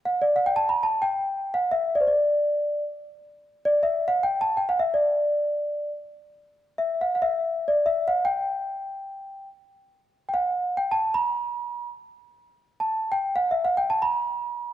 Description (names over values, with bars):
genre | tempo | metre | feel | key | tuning
Arabic maqam ensemble | free time | none | none | G maqam rast | A4 = 440 Hz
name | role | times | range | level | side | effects
celesta | solo | 0.1-14.7 s | C5 to Bb5+50c | -22 LUFS | equal | none
room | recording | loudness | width
moderate recital hall reverb, RT60 1.5 s | none | -22 LUFS | side -12 dB against mid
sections
0.0-14.7 A section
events
none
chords
none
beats
free time